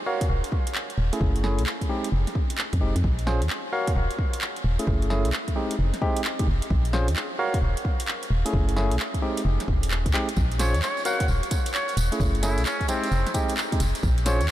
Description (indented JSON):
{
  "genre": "UK garage, two-step garage",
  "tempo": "131 BPM",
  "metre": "4/4",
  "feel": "swing 65% on 16ths",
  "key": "unclear",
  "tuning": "A4 = 445 Hz",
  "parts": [
    { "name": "barky tine electric piano", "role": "stabs", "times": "0.1-14.4 s", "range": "Ab3 to F5", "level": "-28 LUFS", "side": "equal", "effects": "medium stereo tremolo, diffuse ambient delay" },
    { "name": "electronic kick drum", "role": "drums", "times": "0.2-14.2 s", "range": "none", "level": "-26 LUFS", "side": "equal", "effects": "studio reverb" },
    { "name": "house drum kit", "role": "drums", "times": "0.2-14.5 s", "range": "handclaps, hi-hat, snare drum", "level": "-32 LUFS", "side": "right 1 dB", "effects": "studio reverb" },
    { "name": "organ-like FM bass", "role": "bass", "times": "0.3-14.5 s", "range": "Eb1 to F2", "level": "-24 LUFS", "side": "equal", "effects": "none" },
    { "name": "tambourine", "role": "percussion", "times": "10.4-14.5 s", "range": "none", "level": "-37 LUFS", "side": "right 5 dB", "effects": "none" },
    { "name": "trumpet with straight mute", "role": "melody", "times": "10.6-14.5 s", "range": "C4 to Gb5", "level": "-29 LUFS", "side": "equal", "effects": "vintage 12-bit sampler grit, diffuse ambient delay" }
  ],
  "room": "light reverb, digital ambience",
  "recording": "none",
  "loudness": "-22 LUFS",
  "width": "side -14 dB against mid",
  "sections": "0.0-14.5 A section",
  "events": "drum fill 10.1",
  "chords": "0.1 Ebm9; 1.2 Gbm9; 1.9 Fm9; 3.0 Bbm9; 3.7 Ebm9; 4.9 Gbm9; 5.6 Fm9; 6.7 Bbm9; 7.4 Ebm9; 8.5 Gbm9; 9.2 Fm9; 10.4 Bbm9; 11.1 Ebm9; 12.2 Gbm9; 12.9 Fm9",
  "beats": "0.29 0.75 | 1.21 1.67 2.12 2.58 | 3.04 3.50 3.96 4.41 | 4.87 5.33 5.79 6.25 | 6.70 7.16 7.62 8.08 | 8.54 8.99 9.45 9.91 | 10.37 10.83 11.29 11.74 | 12.20 12.66 13.12 13.57 | 14.03 14.49"
}